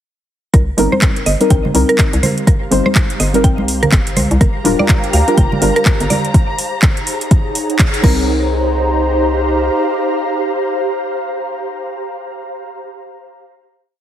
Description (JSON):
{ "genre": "deep house", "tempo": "124 BPM", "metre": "4/4", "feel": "swing 60% on 16ths", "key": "C minor", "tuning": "A4 = 441 Hz", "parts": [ { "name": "mallet-like synth pluck", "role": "arpeggios", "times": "0.5-8.5 s", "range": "Bb4 to G5", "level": "-21 LUFS", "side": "right 3 dB", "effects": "chorus, sidechain pumping, tape echo" }, { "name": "hollow knocking FM bass", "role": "bass", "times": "0.5-9.7 s", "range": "D1 to D2", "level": "-17 LUFS", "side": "equal", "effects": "sidechain pumping" }, { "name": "electronic kick drum", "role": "drums", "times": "0.5-8.2 s", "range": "none", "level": "-12 LUFS", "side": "equal", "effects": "overdrive" }, { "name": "house drum kit", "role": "drums", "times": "0.5-8.2 s", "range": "crash cymbal, handclaps, hi-hat", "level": "-19 LUFS", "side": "right 1 dB", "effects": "none" }, { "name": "ethereal airy pad", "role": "texture", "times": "1.7-12.3 s", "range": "Eb4 to Bb5", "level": "-22 LUFS", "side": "equal", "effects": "ensemble chorus, built-in reverb, sidechain pumping" }, { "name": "deep mellow chord stab", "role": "stabs", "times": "0.8-11.9 s", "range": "G3 to C5", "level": "-17 LUFS", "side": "left 1 dB", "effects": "wide subtle chorus, sidechain pumping, ping-pong delay" }, { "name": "congas", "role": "percussion", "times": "0.9-6.2 s", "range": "none", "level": "-21 LUFS", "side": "right 1 dB", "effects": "none" }, { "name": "warm analog pad", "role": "sustained chords", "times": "4.4-11.9 s", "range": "Eb4 to Bb5", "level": "-20 LUFS", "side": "equal", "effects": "chorus, sidechain pumping" }, { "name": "dark symphonic violin section", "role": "texture", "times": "4.4-8.3 s", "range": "Bb5", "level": "-27 LUFS", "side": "left 2 dB", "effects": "sidechain pumping" } ], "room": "light reverb, digital ambience", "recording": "heavily compressed radio sound", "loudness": "-12 LUFS", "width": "side -11 dB against mid", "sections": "0.5-8.3 groove; 8.3-12.2 final chord", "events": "fade-in on ambient pad 0.5-8.3; band accent 7.8", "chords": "0.5 Cm7; 4.4 Gm7; 6.3 Ebm7; 8.0 Cm7" }